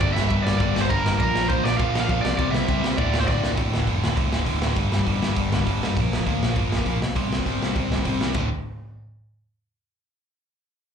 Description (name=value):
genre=punk rock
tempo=201 BPM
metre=4/4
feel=straight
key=D minor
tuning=A4 = 440 Hz
part: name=biting overdriven guitar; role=melody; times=0.0-3.5 s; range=Bb4 to F5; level=-26 LUFS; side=right 2 dB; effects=slapback echo, digital delay
part: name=distorted electric guitar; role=riff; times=0.0-8.5 s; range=D2 to C4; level=-28 LUFS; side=right 12 dB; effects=overdrive, slapback echo
part: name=sludgy distorted guitar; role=riff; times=0.0-8.5 s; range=D2 to C4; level=-28 LUFS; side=left 13 dB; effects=overdrive
part: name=sludgy distorted guitar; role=riff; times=0.0-3.6 s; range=D2 to C5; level=-30 LUFS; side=equal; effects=overdrive, slapback echo
part: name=overdriven picked electric bass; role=bass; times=0.0-8.5 s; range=D1 to D2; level=-26 LUFS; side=equal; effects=none
part: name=raw garage drum kit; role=drums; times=0.0-8.4 s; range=crash cymbal, hi-hat, kick drum, snare drum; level=-26 LUFS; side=equal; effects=none
room=little or no reverb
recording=live gig heard through the venue's PA, club reverb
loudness=-20 LUFS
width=side -7 dB against mid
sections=0.0-3.6 A section; 3.6-8.3 B section; 8.3-9.5 C section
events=drum fill 3.3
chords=0.0 Gm; 1.2 Bb; 2.2 C; 3.0 Dm; 3.6 D5; 4.8 G5; 6.0 Bb; 7.0 C5; 8.3 D5